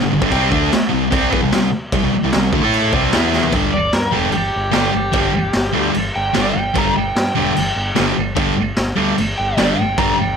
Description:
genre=garage rock duo or trio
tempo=149 BPM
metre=4/4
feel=straight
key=unclear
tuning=A4 = 440 Hz
part: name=thick fuzz guitar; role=riff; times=0.0-10.2 s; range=G2 to A4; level=-17 LUFS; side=equal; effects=distortion
part: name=growling picked electric bass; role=bass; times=0.0-10.3 s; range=E1 to A2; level=-24 LUFS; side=equal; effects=overdrive
part: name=raw garage drum kit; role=drums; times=0.2-10.1 s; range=crash cymbal, kick drum, snare drum, toms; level=-21 LUFS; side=left 1 dB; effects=none
part: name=overdriven slide guitar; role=melody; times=3.7-10.4 s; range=G4 to Bb5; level=-20 LUFS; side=equal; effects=tape echo
room=moderate club reverb, RT60 0.5 s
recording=none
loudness=-14 LUFS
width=side -6 dB against mid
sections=0.0-3.5 A section; 3.5-10.4 B section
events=drum fill 3.3; electric slide guitar solo 3.5-10.4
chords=0.3 C5; 3.1 E5; 3.5 G5

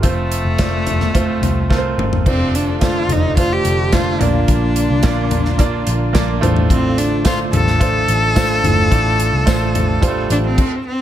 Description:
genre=piano-driven pop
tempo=108 BPM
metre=4/4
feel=straight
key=unclear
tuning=A4 = 438 Hz
part: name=clear grand piano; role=accompaniment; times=0.0-10.6 s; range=A2 to D5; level=-20 LUFS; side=right 4 dB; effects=none
part: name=vintage muted picked electric bass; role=bass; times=0.0-10.6 s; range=F1 to C2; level=-19 LUFS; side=equal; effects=none
part: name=modern studio drum kit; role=drums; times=0.0-10.7 s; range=crash cymbal, hi-hat, kick drum, snare drum, toms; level=-18 LUFS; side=left 1 dB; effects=none
part: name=clear cello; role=melody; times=0.1-11.0 s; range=A3 to A4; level=-20 LUFS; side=left 1 dB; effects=none
part: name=dark studio string section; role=sustained chords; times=2.3-10.5 s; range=D3 to F4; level=-28 LUFS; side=left 3 dB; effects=none
part: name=tambourine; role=percussion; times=7.3-9.6 s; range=none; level=-34 LUFS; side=left 8 dB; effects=none
room=light reverb, small room reverb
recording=none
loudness=-13 LUFS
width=side -11 dB against mid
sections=0.0-2.3 A section; 2.3-11.0 B section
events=drum fill 1.7-2.3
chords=0.0 F; 2.3 F6; 4.2 Bb; 6.4 F6

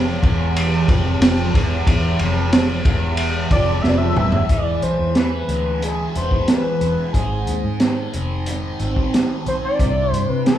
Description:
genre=psychedelic rock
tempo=91 BPM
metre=4/4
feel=straight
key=unclear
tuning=A4 = 441 Hz
part: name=tonewheel organ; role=sustained chords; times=0.0-10.6 s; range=E3 to B#4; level=-31 LUFS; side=right 2 dB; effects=slow rotary speaker
part: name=fuzz guitar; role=riff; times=0.0-10.6 s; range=E2 to E4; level=-23 LUFS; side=right 1 dB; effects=distortion, phaser
part: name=vintage muted fingered electric bass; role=bass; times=0.0-10.6 s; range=E1 to C3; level=-23 LUFS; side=left 1 dB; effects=none
part: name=crunchy breakbeat drum kit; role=drums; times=0.2-10.6 s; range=hi-hat, kick drum, ride cymbal, snare drum, toms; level=-19 LUFS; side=equal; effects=none
part: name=octave-doubled lead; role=melody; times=3.5-10.6 s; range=G#4 to E5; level=-23 LUFS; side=left 1 dB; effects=chorus
room=moderate large studio reverb, RT60 1.1 s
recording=band playing live in one room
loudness=-16 LUFS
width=side -11 dB against mid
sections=0.0-4.5 A section; 4.5-10.6 B section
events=drum fill 3.8-4.5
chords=0.0 E; 7.1 G#; 9.8 Cadd9

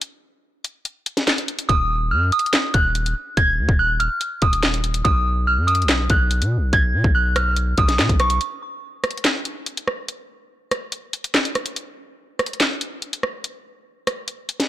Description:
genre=hip hop, drill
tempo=143 BPM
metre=4/4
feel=half-time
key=unclear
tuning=A4 = 437 Hz
part: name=drill drum kit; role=drums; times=0.0-14.7 s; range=handclaps, hi-hat, kick drum, rim click, snare drum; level=-20 LUFS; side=equal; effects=none
part: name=delicate synth tine bell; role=melody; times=1.7-8.4 s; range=Db6 to Ab6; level=-21 LUFS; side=right 1 dB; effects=chorus, low-pass filter
part: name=long sustained 808-style bass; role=bass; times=1.7-8.4 s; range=Eb1 to B2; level=-21 LUFS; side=equal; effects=none
room=digital ambience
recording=blown-out, overdriven recording, overdrive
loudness=-18 LUFS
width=side -13 dB against mid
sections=0.0-14.7 A section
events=break 0.0-1.7, 8.4-14.7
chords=0.0 N.C.; 1.7 Ebm; 5.0 B; 8.4 N.C.

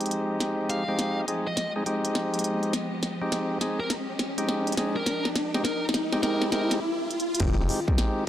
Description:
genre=glitch hop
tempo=103 BPM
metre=4/4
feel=swing 64% on 16ths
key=F minor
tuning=A4 = 440 Hz
part: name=clear symphonic string section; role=sustained chords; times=0.0-8.3 s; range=Eb3 to Eb5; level=-36 LUFS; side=equal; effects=sidechain pumping, low-pass filter
part: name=percussive tonewheel organ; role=stabs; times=0.0-8.2 s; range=Ab3 to Ab4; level=-29 LUFS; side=equal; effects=overdrive, sidechain pumping, low-pass filter, tape echo
part: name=glitchy drum kit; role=drums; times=0.0-8.1 s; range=crash cymbal, hi-hat, snare drum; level=-30 LUFS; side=equal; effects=none
part: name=riser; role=sound effects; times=1.3-7.4 s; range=none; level=-32 LUFS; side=equal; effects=none
part: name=high-gain lead guitar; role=melody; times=0.7-6.7 s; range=Bb4 to F5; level=-34 LUFS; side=left 1 dB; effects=distortion, vintage 12-bit sampler grit, tape echo
part: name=phased detuned saw bass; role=bass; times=7.4-7.7 s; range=F1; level=-26 LUFS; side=equal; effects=phaser, tube saturation
part: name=electronic kick drum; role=drums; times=7.4-8.0 s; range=none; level=-25 LUFS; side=equal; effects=overdrive
room=moderate plate reverb, RT60 2.9 s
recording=dry, gritty hardware recording, transformer saturation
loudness=-24 LUFS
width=side -11 dB against mid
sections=0.0-7.4 A section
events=build-up 0.0-7.4; drum fill 0.0-6.8, 7.1; filter sweep on tonewheel organ 0.0-7.4; riser 1.3-7.4; stop 6.8-7.4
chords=0.0 Fm9

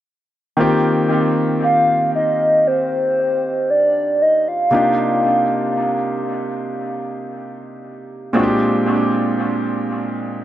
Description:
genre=R&B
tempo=58 BPM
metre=4/4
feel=straight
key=unclear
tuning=A4 = 441 Hz
part: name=clear grand piano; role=accompaniment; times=0.6-10.4 s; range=Bb2 to G4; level=-19 LUFS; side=equal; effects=tape echo
part: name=hollow clarinet-like synth lead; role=melody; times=1.6-6.0 s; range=C5 to F5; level=-16 LUFS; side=equal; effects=chorus, tape echo
room=wet spring reverb, RT60 1.2 s, studio ambience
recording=echo-heavy mix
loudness=-15 LUFS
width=side -12 dB against mid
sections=0.6-10.4 A section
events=none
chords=0.6 Eb69; 4.7 Cm11; 8.3 Bb13

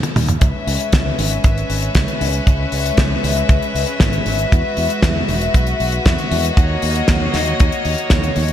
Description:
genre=italo disco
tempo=117 BPM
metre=4/4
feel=straight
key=C# dorian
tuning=A4 = 440 Hz
part: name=damped 70s drum kit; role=drums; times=0.0-8.5 s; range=hi-hat, snare drum, toms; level=-20 LUFS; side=left 1 dB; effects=studio ambience, gated reverb
part: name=fingered electric bass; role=bass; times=0.2-8.5 s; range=E1 to E2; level=-21 LUFS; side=equal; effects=none
part: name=rich chamber string section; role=sustained chords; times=0.4-8.5 s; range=G#3 to E5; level=-20 LUFS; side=left 2 dB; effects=vintage 12-bit sampler grit
part: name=kick drum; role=drums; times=0.4-8.2 s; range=none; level=-14 LUFS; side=right 1 dB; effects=studio ambience
room=light reverb, studio reverb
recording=bright 1980s-style digital production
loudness=-14 LUFS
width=side -11 dB against mid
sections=0.0-8.5 A section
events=break 0.0-0.4; drum fill 0.0-0.4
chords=0.4 C#m7; 4.5 Eadd9; 6.6 D#m7

